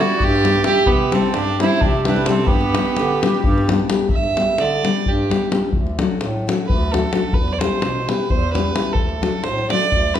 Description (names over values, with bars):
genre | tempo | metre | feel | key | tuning
balkan folk, Balkan wedding band | 259 BPM (eighths) | 7/8 | straight | G major | A4 = 441 Hz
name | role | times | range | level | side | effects
dark fiddle | melody | 0.0-10.2 s | B3 to E5 | -20 LUFS | right 5 dB | none
accordion | second line | 0.0-3.7 s | G4 to E5 | -25 LUFS | right 3 dB | none
nylon-string guitar | accompaniment | 0.0-10.2 s | F#3 to G4 | -22 LUFS | left 4 dB | none
warm bass clarinet | bass | 0.0-10.2 s | D2 to D3 | -23 LUFS | equal | none
davul | percussion | 0.2-10.2 s | none | -21 LUFS | left 2 dB | none
room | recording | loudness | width
wet recital hall reverb, RT60 1.4 s | recorded in a church or concert hall | -16 LUFS | side -10 dB against mid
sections
0.0-4.1 A section; 4.1-10.2 B section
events
fiddle solo 4.1-10.2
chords
0.0 G; 0.9 C; 2.5 G; 5.7 D; 7.3 Em; 9.0 D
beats
0.17 0.40 0.63 | 0.86 1.09 1.32 1.55 1.79 2.02 2.25 | 2.48 2.71 2.94 3.18 3.41 3.64 3.87 | 4.10 4.33 4.57 4.80 5.03 5.26 5.49 | 5.72 5.96 6.19 6.42 6.65 6.88 7.11 | 7.34 7.57 7.80 8.04 8.27 8.50 8.73 | 8.96 9.19 9.42 9.65 9.88 10.11